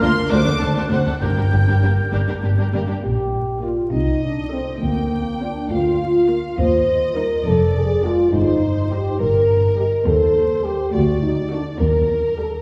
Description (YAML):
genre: quick classical-period movement for symphony orchestra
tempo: 68 BPM (dotted quarters)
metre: 6/8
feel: straight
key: G minor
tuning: A4 = 440 Hz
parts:
  - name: warm studio violin section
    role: melody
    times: 0.0-12.6 s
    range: Bb4 to D6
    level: -34 LUFS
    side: equal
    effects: none
  - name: mellow hollow silver concert flute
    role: second line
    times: 0.0-2.7 s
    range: F6 to G6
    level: -29 LUFS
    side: equal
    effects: none
  - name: rich studio violin section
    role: second line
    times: 0.0-12.6 s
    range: D4 to G5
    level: -34 LUFS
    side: equal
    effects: none
  - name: warm clarinet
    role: second line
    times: 0.0-2.7 s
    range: Bb4 to C5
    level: -32 LUFS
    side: equal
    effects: none
  - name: rich studio viola section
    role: accompaniment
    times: 0.0-12.6 s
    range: G3 to A4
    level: -31 LUFS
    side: equal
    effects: none
  - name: mellow French horn section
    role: sustained chords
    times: 0.0-12.5 s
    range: Bb3 to C5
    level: -22 LUFS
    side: equal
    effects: none
  - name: rich studio cello section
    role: bass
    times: 0.0-12.5 s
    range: D2 to C3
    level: -28 LUFS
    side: equal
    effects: none
  - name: warm studio double bass section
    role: bass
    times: 0.0-12.5 s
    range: F1 to Eb2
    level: -25 LUFS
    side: equal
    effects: none
  - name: timpani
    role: percussion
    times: 0.0-2.1, 8.3-9.2 s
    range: G2 to D3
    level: -28 LUFS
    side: equal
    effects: none
room: wet concert hall reverb, RT60 2.1 s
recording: heard from further back in the room, vinyl crackle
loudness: -19 LUFS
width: mono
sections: 0.0-3.0 A section; 3.0-12.6 B section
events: none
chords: 0.3 D7; 1.2 Gm; 3.0 Bb; 3.9 Adim/C; 4.8 Bb/D; 6.6 Eb; 7.5 Ddim/F; 8.3 Eb/G; 10.1 Cm/Eb; 10.9 D; 11.8 Eb